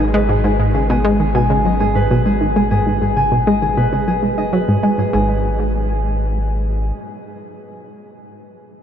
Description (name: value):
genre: ambient, sequencer-driven space music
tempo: 99 BPM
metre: 4/4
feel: straight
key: G# minor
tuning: A4 = 440 Hz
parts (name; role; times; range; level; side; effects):
- concert harp; arpeggios; 0.0-7.4 s; G#4 to G#5; -21 LUFS; equal; auto-pan, analog delay
- analog pluck; riff; 0.0-5.4 s; G#2 to D#4; -17 LUFS; equal; chorus, analog delay
- round analog bass; bass; 0.0-6.9 s; G#1; -21 LUFS; equal; none
room: wet huge ambient reverb, RT60 8.3 s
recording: in a vast, echoing space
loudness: -14 LUFS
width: side -9 dB against mid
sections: 0.0-5.1 A section; 5.1-7.6 B section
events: filter sweep on synth arpeggio sound 0.0-5.1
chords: 0.0 G#m; 5.1 N.C.